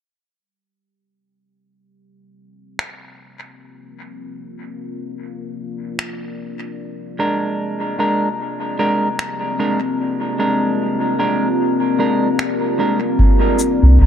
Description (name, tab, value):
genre	ambient dub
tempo	75 BPM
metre	4/4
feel	swing 59% on 16ths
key	unclear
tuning	A4 = 440 Hz
part	deep dark ambient pad	sustained chords	2.7-14.1 s	C4 to D5	-22 LUFS	left 2 dB	chorus, built-in reverb
part	electronic finger snaps and cabasa	drums	2.8-13.8 s	none	-28 LUFS	equal	dub echo
part	semi-hollow electric guitar	stabs	7.2-13.0 s	Ab3 to Bb4	-20 LUFS	right 1 dB	dub echo
part	electronic kick drum	drums	13.2-14.1 s	none	-14 LUFS	equal	none
part	warm sub bass	bass	13.8-14.1 s	C2	-7 LUFS	equal	none
room	moderate spring reverb, RT60 2.4 s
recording	none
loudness	-16 LUFS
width	side -9 dB against mid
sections	0.4-13.2 A section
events	filter sweep on ambient pad 0.4-13.2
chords	0.4 C5; 6.8 Bb7; 13.2 C7(no3)